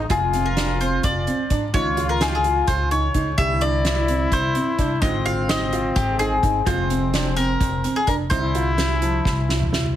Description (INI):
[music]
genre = progressive instrumental, band music in an uneven meter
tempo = 256 BPM (eighths)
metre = 7/8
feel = straight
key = C mixolydian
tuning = A4 = 445 Hz
[part]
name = brilliant trombone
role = second line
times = 0.0-9.7 s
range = C4 to F4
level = -27 LUFS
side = left 4 dB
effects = plate reverb, tape echo
[part]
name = hollow-body jazz guitar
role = accompaniment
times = 0.0-9.9 s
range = D3 to F4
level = -32 LUFS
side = right 1 dB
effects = double-tracked left and right, plate reverb
[part]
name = upright bass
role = bass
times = 0.0-9.9 s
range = F1 to Ab2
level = -24 LUFS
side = equal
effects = none
[part]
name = mandolin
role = melody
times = 0.1-9.4 s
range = G4 to F5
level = -24 LUFS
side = left 2 dB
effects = plate reverb, tape echo
[part]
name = dark baby grand piano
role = arpeggios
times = 0.1-9.8 s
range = F3 to G4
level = -28 LUFS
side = right 4 dB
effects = plate reverb, tape echo
[part]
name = soft-mallet drum kit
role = drums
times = 0.1-9.8 s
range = hi-hat, kick drum, snare drum, toms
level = -26 LUFS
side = equal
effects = none
[sound]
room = light reverb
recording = heavily compressed radio sound, multiband compression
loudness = -18 LUFS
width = side -11 dB against mid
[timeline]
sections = 0.0-10.0 A section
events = drum fill 9.3-10.0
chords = 0.1 Fm; 1.7 Dbadd9; 3.4 C; 5.0 Ab; 6.7 Fm; 8.3 C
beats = | 0.10 0.33 0.57 0.80 1.03 1.27 1.50 | 1.74 1.97 2.21 2.44 2.67 2.91 3.14 | 3.38 3.61 3.85 4.08 4.32 4.55 4.79 | 5.02 5.25 5.49 5.72 5.96 6.19 6.43 | 6.66 6.90 7.13 7.37 7.61 7.84 8.07 | 8.31 8.55 8.78 9.02 9.25 9.49 9.73